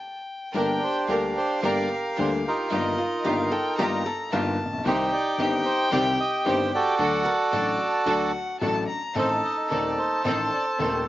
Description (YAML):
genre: tango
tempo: 111 BPM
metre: 4/4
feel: rubato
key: G minor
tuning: A4 = 440 Hz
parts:
  - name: warm violin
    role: second line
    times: 0.0-11.1 s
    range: Eb5 to Bb5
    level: -30 LUFS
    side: left 2 dB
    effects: slapback echo
  - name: warm upright piano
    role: accompaniment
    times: 0.5-11.0 s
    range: Eb1 to A4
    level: -28 LUFS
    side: left 2 dB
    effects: none
  - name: clear studio string section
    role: stabs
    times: 0.5-11.0 s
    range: G3 to Bb4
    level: -32 LUFS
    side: right 3 dB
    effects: none
  - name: bandoneon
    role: melody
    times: 0.6-11.1 s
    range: D4 to Eb5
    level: -25 LUFS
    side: right 2 dB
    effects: slapback echo
  - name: archtop guitar, miked and amplified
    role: second line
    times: 3.0-9.0 s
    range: D4 to Bb4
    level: -33 LUFS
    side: equal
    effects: slapback echo
room: light reverb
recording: recorded outdoors, with no room sound, nothing above 7.6 kHz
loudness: -22 LUFS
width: side -14 dB against mid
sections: 0.5-11.1 A section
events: band accent 0.0-0.5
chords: 0.0 N.C.; 0.5 Gm; 2.7 Ebadd9/G; 4.9 Cm; 7.0 D; 9.2 Adim